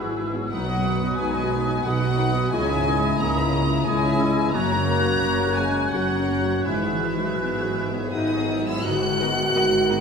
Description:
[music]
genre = cinematic, emotional film score for orchestra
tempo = 80-91 BPM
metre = 3/4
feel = rubato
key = unclear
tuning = A4 = 445 Hz
[part]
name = clear oboe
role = second line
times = 0.0-8.5 s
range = B4 to D#5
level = -33 LUFS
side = right 2 dB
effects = none
[part]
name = hollow flute section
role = second line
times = 0.0-10.0 s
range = D#5 to F#6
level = -30 LUFS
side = right 1 dB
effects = none
[part]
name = mellow clarinet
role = second line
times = 0.0-10.0 s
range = D#4 to F#4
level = -30 LUFS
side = equal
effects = none
[part]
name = warm studio violin section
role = second line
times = 0.0-10.0 s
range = D#4 to E5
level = -35 LUFS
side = left 3 dB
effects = none
[part]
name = dark studio viola section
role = accompaniment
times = 0.0-10.0 s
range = D#3 to G#4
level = -34 LUFS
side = right 1 dB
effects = none
[part]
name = felt-muted upright piano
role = accompaniment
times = 0.0-10.0 s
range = B1 to A#4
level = -28 LUFS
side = left 2 dB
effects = none
[part]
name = dark chamber cello section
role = bass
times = 0.0-10.0 s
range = F#2 to C#3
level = -29 LUFS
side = right 1 dB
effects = none
[part]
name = rich studio double bass section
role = bass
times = 0.0-10.0 s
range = F#1 to C#2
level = -30 LUFS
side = right 4 dB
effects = none
[part]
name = clear studio violin section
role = melody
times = 0.5-10.0 s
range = E5 to F#6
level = -28 LUFS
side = left 4 dB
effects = none
[part]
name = mellow French horn section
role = sustained chords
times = 0.5-10.0 s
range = E3 to F#4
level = -28 LUFS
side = left 1 dB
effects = none
[part]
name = cymbal swell and tam-tam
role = percussion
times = 4.5-10.0 s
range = none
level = -34 LUFS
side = left 2 dB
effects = none
[sound]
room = wet scoring stage reverb, RT60 1.9 s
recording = minimal, uncompressed stereo recording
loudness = -20 LUFS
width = side -6 dB against mid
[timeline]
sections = 0.0-8.9 A section; 8.9-10.0 B section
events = band accent 8.9-9.6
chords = 0.0 Eadd9/G#; 0.5 B; 2.5 C#madd9; 4.5 F#; 6.7 Eadd9/G#; 8.9 G#madd9

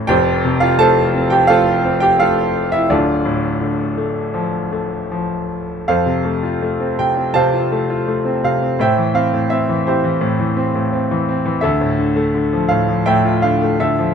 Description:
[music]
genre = classical, lyrical solo piano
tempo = 84 BPM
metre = 4/4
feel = rubato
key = D minor, F major from 5.9 s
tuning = A4 = 440 Hz
[part]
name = bright grand piano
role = solo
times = 0.0-14.1 s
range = D1 to A5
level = -14 LUFS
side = equal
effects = none
[sound]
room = light reverb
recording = close, detailed microphones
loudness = -14 LUFS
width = side -7 dB against mid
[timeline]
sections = 0.0-5.9 A section; 5.9-14.1 B section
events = none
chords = 0.1 F; 2.9 Dm; 5.9 F; 8.8 Am7; 11.6 Dmadd9

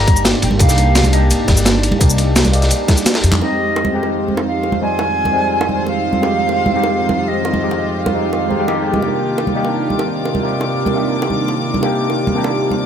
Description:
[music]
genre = liquid drum and bass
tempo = 171 BPM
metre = 4/4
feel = straight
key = F dorian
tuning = A4 = 442 Hz
[part]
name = silver concert flute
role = melody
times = 0.0-8.9 s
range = D5 to Bb5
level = -20 LUFS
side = right 2 dB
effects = ping-pong delay
[part]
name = overdriven tine electric piano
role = accompaniment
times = 0.0-12.9 s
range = F2 to G4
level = -18 LUFS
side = equal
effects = phaser
[part]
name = upright bass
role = bass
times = 0.0-3.4 s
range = G1 to F2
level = -15 LUFS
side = equal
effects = none
[part]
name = breakbeat sampler-style drum kit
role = drums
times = 0.1-3.4 s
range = cabasa, handclaps, hi-hat, snare drum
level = -17 LUFS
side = equal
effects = small room ambience
[part]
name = crunchy breakbeat drum kit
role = drums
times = 0.1-3.4 s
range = ride cymbal, snare drum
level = -22 LUFS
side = equal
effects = high-pass filter on cymbals, small room ambience, high-pass filter on snare, high-pass filter on room
[part]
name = electronic kick drum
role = drums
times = 0.1-3.0 s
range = none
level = -12 LUFS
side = equal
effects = small room ambience
[part]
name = congas and bongos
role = percussion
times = 0.1-12.8 s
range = none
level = -22 LUFS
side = right 3 dB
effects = none
[part]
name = rich studio string section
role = sustained chords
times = 3.4-12.9 s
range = C3 to D6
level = -23 LUFS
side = equal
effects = none
[sound]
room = light reverb, small room ambience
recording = none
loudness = -13 LUFS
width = side -8 dB against mid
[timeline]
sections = 0.0-3.4 A section; 3.4-12.9 B section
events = drum fill 3.1; band accent 3.3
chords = 0.0 Cm9; 3.4 Fm9; 9.0 Cm9

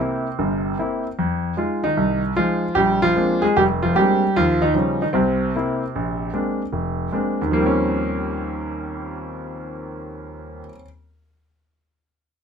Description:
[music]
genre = solo jazz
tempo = 151 BPM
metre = 4/4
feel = swing 67% on 8ths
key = Eb mixolydian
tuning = A4 = 436 Hz
[part]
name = warm concert grand piano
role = solo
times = 0.0-10.8 s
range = F1 to Ab4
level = -19 LUFS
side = equal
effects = none
[sound]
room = light reverb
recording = close, detailed microphones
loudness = -18 LUFS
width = side -7 dB against mid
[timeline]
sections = 0.0-7.5 A section; 7.5-10.7 B section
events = none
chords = 0.0 C7; 1.2 Fm7; 2.8 Bb9; 4.3 Eb9; 5.1 C7; 5.9 Bb9; 7.5 Eb13

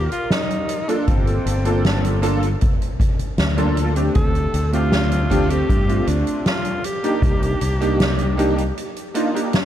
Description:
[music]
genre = vaporwave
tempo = 78 BPM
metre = 4/4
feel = straight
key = G minor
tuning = A4 = 440 Hz
[part]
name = clear alto saxophone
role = melody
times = 0.0-9.2 s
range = C4 to A4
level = -26 LUFS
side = equal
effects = tape echo
[part]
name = clear electric grand piano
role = accompaniment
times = 0.0-9.6 s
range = A3 to D5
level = -22 LUFS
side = right 1 dB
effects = ensemble chorus, tape echo
[part]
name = fretless electric bass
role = bass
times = 0.0-8.7 s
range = G1 to G2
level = -20 LUFS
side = equal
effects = none
[part]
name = soft-mallet drum kit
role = drums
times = 0.1-9.7 s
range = hi-hat, snare drum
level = -24 LUFS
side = equal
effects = none
[part]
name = kick drum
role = drums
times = 1.1-7.4 s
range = none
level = -21 LUFS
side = equal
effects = none
[sound]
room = light reverb, small room reverb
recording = dark, warm production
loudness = -17 LUFS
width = side -11 dB against mid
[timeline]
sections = 0.0-9.7 A section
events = break 8.8-9.7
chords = 0.0 Ebmaj9; 1.1 Gm9; 4.2 D7sus4; 6.8 Cm7

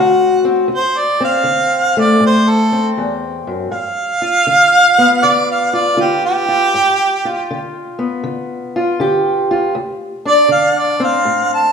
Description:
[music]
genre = acoustic country blues, solo or duo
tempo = 80 BPM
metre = 4/4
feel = swing 66% on 8ths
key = unclear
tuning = A4 = 441 Hz
[part]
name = warm harmonica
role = melody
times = 0.0-11.7 s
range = G4 to A5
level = -13 LUFS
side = right 2 dB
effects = none
[part]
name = fingerpicked steel-string acoustic guitar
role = accompaniment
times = 0.0-11.7 s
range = D2 to G4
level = -16 LUFS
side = left 2 dB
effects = none
[sound]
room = wet recital hall reverb, RT60 1.6 s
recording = recorded in a church or concert hall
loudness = -12 LUFS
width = side -6 dB against mid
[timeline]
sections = 0.0-11.7 A section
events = harmonica solo 0.0-11.7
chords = 0.0 D7; 3.7 G7; 9.8 D7(no3)

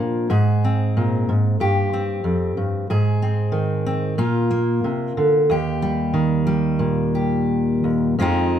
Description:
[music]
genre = folk, solo fingerstyle acoustic guitar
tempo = 92 BPM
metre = 4/4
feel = rubato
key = Eb major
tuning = A4 = 442 Hz
[part]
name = fingerpicked steel-string acoustic guitar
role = solo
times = 0.0-8.6 s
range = Eb2 to Ab4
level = -18 LUFS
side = equal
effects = none
[sound]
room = light reverb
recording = minimal, uncompressed stereo recording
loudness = -18 LUFS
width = side -9 dB against mid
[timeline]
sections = 0.0-8.2 A section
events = none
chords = 0.3 Abadd9; 1.6 C5/G; 2.9 Ab; 4.2 Bb; 5.5 Eb

